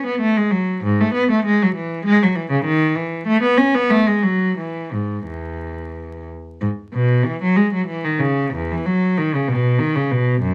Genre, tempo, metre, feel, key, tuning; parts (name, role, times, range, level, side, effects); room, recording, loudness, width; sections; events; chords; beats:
classical, baroque-style suite movement for unaccompanied cello; 85-99 BPM; 3/4; rubato; E major; A4 = 440 Hz
rich cello; solo; 0.0-10.5 s; E2 to C#4; -19 LUFS; equal
moderate studio ambience, RT60 0.5 s; vinyl crackle; -19 LUFS; mono
0.0-6.6 A section; 6.6-10.5 B section
0.20 | 0.82 1.44 2.05 | 2.66 3.28 3.92 | 4.59 5.27 5.94 | 6.62 7.26 7.89 | 8.54 9.19 9.81 | 10.43